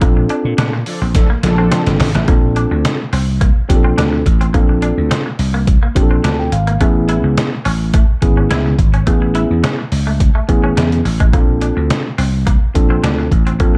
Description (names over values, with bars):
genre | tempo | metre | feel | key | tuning
early-eighties boogie funk | 106 BPM | 4/4 | straight | unclear | A4 = 440 Hz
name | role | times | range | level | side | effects
mellow tine electric piano | accompaniment | 0.0-13.8 s | B3 to A5 | -21 LUFS | equal | none
clean electric guitar | riff | 0.0-13.8 s | G#3 to E4 | -27 LUFS | equal | analog chorus
vintage slap bass | bass | 0.0-13.8 s | G1 to Bb2 | -18 LUFS | equal | none
trip hop sampler-style drum kit | drums | 0.0-13.7 s | hi-hat, kick drum, snare drum | -17 LUFS | equal | none
mellow synth brass | second line | 0.9-1.8 s | F3 to A4 | -21 LUFS | equal | chorus
room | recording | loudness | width
little or no reverb | dark, warm production | -14 LUFS | mono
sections
0.0-2.3 A section; 2.3-13.8 B section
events
drum fill 1.1-2.3; tine electric piano fill 6.0-6.8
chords
0.0 Bbmaj9; 6.8 Amaj9; 11.3 Bbmaj9